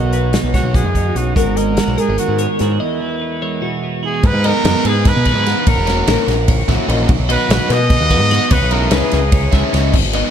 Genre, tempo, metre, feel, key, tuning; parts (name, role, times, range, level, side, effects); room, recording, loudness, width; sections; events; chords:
math rock and midwest emo; 294 BPM (eighths); 7/8; straight; A4 = 435 Hz
clear trumpet; melody; 0.0-9.7 s; E4 to D#5; -21 LUFS; right 1 dB; ping-pong delay
twelve-string electric guitar; accompaniment; 0.0-5.7 s; E2 to F#4; -23 LUFS; right 8 dB; wide subtle chorus
twelve-string electric guitar; arpeggios; 0.0-10.3 s; F#4 to F#5; -22 LUFS; left 4 dB; wide subtle chorus, ping-pong delay
growling picked electric bass; bass; 0.0-10.2 s; E1 to B2; -17 LUFS; equal; overdrive
loose indie drum kit; drums; 0.1-10.2 s; crash cymbal, hi-hat, kick drum, ride cymbal, snare drum; -17 LUFS; equal
biting overdriven guitar; riff; 4.5-10.3 s; C#3 to F#4; -20 LUFS; equal
light reverb, small room ambience; -13 LUFS; side -8 dB against mid
0.0-4.2 A section; 4.2-10.3 B section
break 2.8-4.2
0.0 Bmaj9; 1.4 G#m11; 2.8 Emaj9; 4.2 G#m7; 5.7 F#7; 7.1 B; 8.5 C#m7